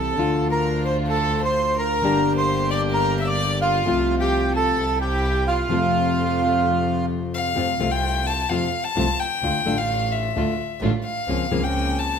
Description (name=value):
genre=tango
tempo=130 BPM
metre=4/4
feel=rubato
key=F major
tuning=A4 = 441 Hz
part: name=bandoneon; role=melody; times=0.0-7.1 s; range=F4 to E6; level=-23 LUFS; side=right 3 dB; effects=none
part: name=rich violin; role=second line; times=0.0-12.2 s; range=F4 to A5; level=-26 LUFS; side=left 4 dB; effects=none
part: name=nylon-string guitar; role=accompaniment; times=0.0-11.6 s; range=C3 to G4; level=-25 LUFS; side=left 4 dB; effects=none
part: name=rich chamber string section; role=stabs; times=0.0-12.2 s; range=F3 to G4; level=-31 LUFS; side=right 2 dB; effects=none
part: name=clear double bass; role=bass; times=0.0-12.2 s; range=G1 to F2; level=-26 LUFS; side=right 1 dB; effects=none
room=moderate large studio reverb, RT60 1.2 s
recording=minimal, uncompressed stereo recording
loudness=-19 LUFS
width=side -7 dB against mid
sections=0.0-7.6 A section; 7.6-12.2 A section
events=violin solo 7.6-12.2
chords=0.2 Dm; 2.0 Gm; 3.9 F/C; 4.8 C; 5.7 F; 9.4 Dm; 11.3 Bbmadd9/Db